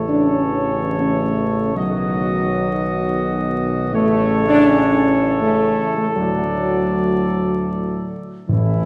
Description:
classical; 75-83 BPM; 3/4; straight; A major; A4 = 439 Hz
mellow trumpet section; melody; 0.0-8.9 s; E4 to D#5; -26 LUFS; equal
dark trombone section; sustained chords; 0.0-8.9 s; A2 to F#3; -28 LUFS; equal
mellow French horn section; sustained chords; 0.0-8.9 s; F#3 to C#5; -21 LUFS; equal
clear tuba; bass; 0.0-8.9 s; A1 to D2; -26 LUFS; equal
timpani; percussion; 8.5-8.9 s; A2; -19 LUFS; equal
wet concert hall reverb, RT60 2.5 s; vinyl crackle; -18 LUFS; mono
0.0-8.5 A section
0.0 A; 1.8 B; 3.9 A; 6.2 D

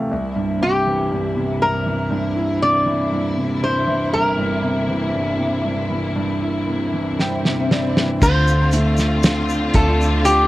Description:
pop ballad; 59 BPM; 4/4; straight; A4 = 440 Hz
clear grand piano; accompaniment; 0.0-10.5 s; G1 to G5; -21 LUFS; right 1 dB; cassette tape
rich studio string section; sustained chords; 0.1-10.5 s; C3 to F4; -25 LUFS; left 1 dB; cassette tape
lap resonator guitar; melody; 0.6-10.5 s; G4 to D5; -20 LUFS; left 1 dB; cassette tape
swell; sound effects; 6.8-8.2 s; -29 LUFS; left 4 dB
damped 70s drum kit; drums; 7.2-10.5 s; crash cymbal, hi-hat, kick drum, snare drum; -18 LUFS; equal; cassette tape
vintage muted fingered electric bass; bass; 8.2-10.5 s; D2; -19 LUFS; equal
egg shaker; percussion; 8.2-10.5 s; -35 LUFS; left 4 dB
moderate booth ambience, RT60 0.2 s; home recording on cassette; -17 LUFS; side -17 dB against mid
0.0-8.2 A section; 8.2-10.5 B section
grand piano fill 6.7-8.2; swell 6.8-8.2; drum fill 7.2-8.2
0.1 C7; 8.2 Dm7

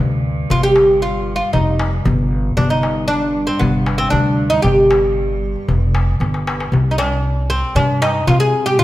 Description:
Arabic maqam ensemble; 116 BPM; 4/4; straight; G maqam hijaz; A4 = 441 Hz
upright bass; bass; 0.0-8.8 s; F1 to C3; -19 LUFS; equal
rich studio cello section; drone; 0.0-6.8 s; G2; -28 LUFS; right 2 dB
darbuka; percussion; 0.1-8.8 s; -20 LUFS; left 2 dB
oud; melody; 0.5-8.8 s; B3 to Ab4; -16 LUFS; equal
moderate recital hall reverb, RT60 1.5 s; -14 LUFS; side -15 dB against mid
0.0-6.7 A section; 6.7-8.8 B section
drum fill 6.2-6.7

